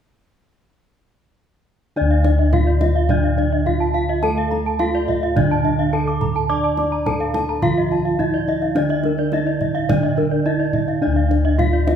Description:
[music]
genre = Balinese gamelan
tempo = 106 BPM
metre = 4/4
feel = straight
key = D pelog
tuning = A4 = 444 Hz
[part]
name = gamelan-type bronze metallophone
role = melody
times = 2.0-12.0 s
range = D4 to D5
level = -22 LUFS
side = left 1 dB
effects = none
[part]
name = gamelan-type bronze metallophone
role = accompaniment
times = 2.0-12.0 s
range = D3 to D4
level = -26 LUFS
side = right 4 dB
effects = none
[part]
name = gamelan-type bronze metallophone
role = arpeggios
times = 2.0-12.0 s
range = Bb4-20c to D6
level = -24 LUFS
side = left 4 dB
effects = none
[part]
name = gamelan-type bossed gongs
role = bass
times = 2.0-12.0 s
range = D2 to D5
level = -21 LUFS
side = left 1 dB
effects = none
[part]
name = gamelan-type bronze metallophone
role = arpeggios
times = 2.1-11.9 s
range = D5 to D6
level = -26 LUFS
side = right 5 dB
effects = none
[part]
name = kendang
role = percussion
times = 2.2-12.0 s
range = none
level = -26 LUFS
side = right 4 dB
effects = none
[sound]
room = wet recital hall reverb, RT60 1.6 s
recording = recorded in a church or concert hall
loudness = -16 LUFS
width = side -8 dB against mid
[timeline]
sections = 2.0-12.0 A section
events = none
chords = none

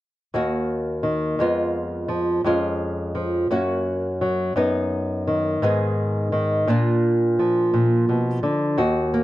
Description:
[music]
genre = folk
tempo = 57 BPM (dotted quarters)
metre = 6/8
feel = straight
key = unclear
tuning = A4 = 441 Hz
[part]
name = nylon-string guitar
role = accompaniment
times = 0.3-9.2 s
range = Eb2 to Ab4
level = -20 LUFS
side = equal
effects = none
[sound]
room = light reverb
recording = dry, close 1970s-style studio recording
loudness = -20 LUFS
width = side -15 dB against mid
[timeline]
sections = 0.3-8.8 A section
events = none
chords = 0.3 Ebm; 1.4 Fdim; 2.5 Db/F; 3.5 Gb; 4.6 B/F#; 5.6 Abm; 6.7 Bb

